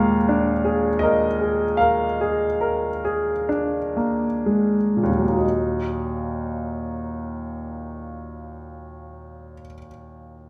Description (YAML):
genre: classical, romantic nocturne for solo piano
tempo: 29-44 BPM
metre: 4/4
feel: rubato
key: Eb minor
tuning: A4 = 440 Hz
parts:
  - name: clear baby grand piano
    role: solo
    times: 0.0-10.5 s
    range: Eb2 to F5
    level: -24 LUFS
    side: equal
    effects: none
room: moderate recital hall reverb, RT60 1.6 s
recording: none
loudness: -22 LUFS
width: mono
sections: 0.0-5.4 A section; 5.4-10.5 B section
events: slowing down 0.0-5.4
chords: 0.0 Bb7/Eb; 5.4 Ebm